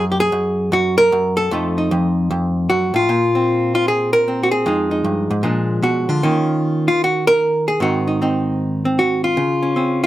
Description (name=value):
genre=solo jazz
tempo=152 BPM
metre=4/4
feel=swing 64% on 8ths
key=Bb minor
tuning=A4 = 440 Hz
part: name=hollow-body jazz guitar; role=solo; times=0.0-10.1 s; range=F2 to Bb4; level=-15 LUFS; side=equal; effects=none
room=light reverb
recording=none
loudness=-15 LUFS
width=side -14 dB against mid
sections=0.0-3.1 A section; 3.1-10.1 B section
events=none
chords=0.0 N.C.; 1.5 F7b9; 3.1 Bbsus2; 4.7 Fm7; 5.4 Bb7b9; 6.2 Ebsus2; 7.8 Ab7; 9.4 Dbmaj7